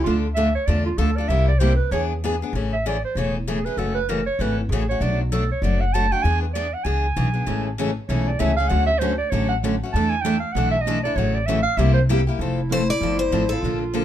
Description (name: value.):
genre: acoustic string swing (jazz manouche).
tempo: 195 BPM.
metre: 4/4.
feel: swing 60% on 8ths.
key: A major.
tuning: A4 = 438 Hz.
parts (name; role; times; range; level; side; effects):
warm clarinet; second line; 0.0-14.0 s; E4 to A5; -24 LUFS; right 3 dB; none.
picked steel-string acoustic guitar; accompaniment; 0.0-14.0 s; B2 to A4; -26 LUFS; left 4 dB; none.
picked steel-string acoustic guitar; accompaniment; 0.1-2.3, 7.5-14.0 s; C3 to B4; -28 LUFS; right 5 dB; none.
upright bass; bass; 0.1-14.0 s; E1 to E2; -23 LUFS; equal; none.
picked steel-string acoustic guitar; melody; 12.7-13.8 s; A4 to D5; -24 LUFS; left 4 dB; none.
room: light reverb.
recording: minimal, uncompressed stereo recording.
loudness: -19 LUFS.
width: side -11 dB against mid.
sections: 0.0-2.5 A section; 2.5-12.4 A section; 12.4-14.0 B section.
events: clarinet solo 0.0-12.4.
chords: 0.1 Dm; 1.3 C7; 1.9 E7; 2.5 Amaj7; 3.8 F#m7; 5.0 Bm7; 6.2 E7; 7.5 Amaj7; 8.7 Dmaj7; 9.9 E7sus4; 11.2 A6; 11.8 C7; 12.4 F.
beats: | 0.07 0.37 0.68 0.99 | 1.30 1.61 1.92 2.23 | 2.54 2.85 3.16 3.47 | 3.78 4.09 4.40 4.71 | 5.01 5.32 5.63 5.94 | 6.25 6.56 6.87 7.17 | 7.48 7.79 8.10 8.40 | 8.71 9.02 9.33 9.63 | 9.94 10.25 10.55 10.86 | 11.17 11.47 11.78 12.09 | 12.40 12.70 13.01 13.32 | 13.63 13.93.